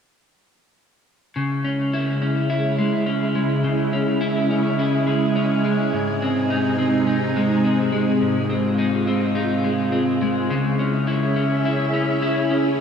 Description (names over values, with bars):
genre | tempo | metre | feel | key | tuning
dream pop | 105 BPM | 4/4 | straight | unclear | A4 = 440 Hz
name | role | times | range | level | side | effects
soft string machine | sustained chords | 1.7-12.8 s | C3 to Fb5 | -22 LUFS | right 1 dB | ensemble chorus
electric guitar at the edge of break-up | arpeggios | 1.4-12.8 s | Ab2 to Fb4 | -21 LUFS | left 1 dB | wide subtle chorus, digital delay
room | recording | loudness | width
wet lush hall reverb, RT60 2.5 s | none | -18 LUFS | side -7 dB against mid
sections
1.4-10.5 A section; 10.5-12.8 B section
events
none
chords
1.4 Dbm; 5.9 Ab; 10.5 Dbm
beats
| 1.36 1.93 2.50 3.08 | 3.65 4.22 4.79 5.36 | 5.93 6.50 7.08 7.65 | 8.22 8.79 9.36 9.93 | 10.50 11.07 11.65 12.22 | 12.79